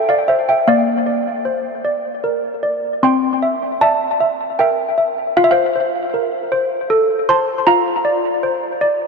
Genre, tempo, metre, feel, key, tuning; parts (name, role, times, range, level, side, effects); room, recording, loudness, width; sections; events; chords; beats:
classical, lullaby for handbells; 77 BPM; 3/4; straight; F major; A4 = 441 Hz
malleted handbells; solo; 0.0-9.1 s; Bb3 to C6; -14 LUFS; equal; ping-pong delay
wet huge ambient reverb, RT60 5.0 s; dreamy mix soaked in reverb; -14 LUFS; side -4 dB against mid
0.0-9.1 A section
0.0 F; 0.7 Bb; 3.0 C7; 5.4 F; 7.7 Bb/F
| 0.67 1.45 2.24 | 3.03 3.81 4.59 | 5.36 6.13 6.90 | 7.66 8.43